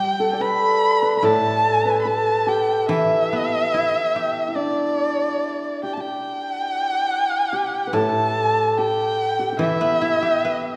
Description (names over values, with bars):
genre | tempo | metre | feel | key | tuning
chinese traditional, Chinese chamber ensemble | 72 BPM | 4/4 | straight | unclear | A4 = 439 Hz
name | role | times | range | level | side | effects
warm erhu | melody | 0.0-10.8 s | D5 to B5 | -23 LUFS | equal | none
hammered dulcimer | second line | 0.0-10.8 s | D4 to D5 | -26 LUFS | equal | none
guzheng | accompaniment | 0.0-10.8 s | A2 to B4 | -28 LUFS | equal | none
room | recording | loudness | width
wet recital hall reverb, RT60 1.6 s | heard from further back in the room | -21 LUFS | mono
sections
0.0-6.3 A section; 6.3-10.8 B section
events
none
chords
none